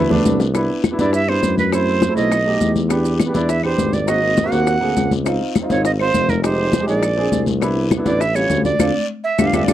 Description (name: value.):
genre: Afro-Cuban jazz.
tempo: 204 BPM.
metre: 4/4.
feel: straight.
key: unclear.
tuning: A4 = 440 Hz.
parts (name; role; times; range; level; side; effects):
warm baby grand piano; accompaniment; 0.0-9.7 s; G3 to Ab4; -20 LUFS; right 1 dB; none.
mellow tuba; bass; 0.0-9.7 s; F1 to G2; -21 LUFS; equal; none.
bongos and cowbell; percussion; 0.1-9.7 s; none; -24 LUFS; left 9 dB; none.
congas; percussion; 0.1-9.7 s; none; -22 LUFS; left 2 dB; none.
guiro; percussion; 0.3-9.7 s; none; -36 LUFS; left 10 dB; none.
maracas; percussion; 0.3-9.7 s; none; -34 LUFS; right 12 dB; none.
claves; percussion; 0.6-9.7 s; none; -31 LUFS; left 12 dB; none.
breathy bright jazz flute; melody; 1.0-9.7 s; Bb4 to Gb5; -20 LUFS; right 4 dB; none.
room: light reverb.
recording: dry, close 1970s-style studio recording.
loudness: -15 LUFS.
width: side -12 dB against mid.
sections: 0.6-9.7 A section.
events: drum fill 0.0-0.6, 9.4-9.7; band accent 8.8-9.7.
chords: 0.0 G (rootless); 0.6 Cmaj7; 1.7 F#m7b5; 2.3 Baug7; 2.9 Em7; 4.1 Ab7; 5.3 Dbmaj7 (rootless); 6.4 Fm7; 7.0 Bb9; 7.6 Cmaj7; 8.2 A7b13; 8.8 Dm7.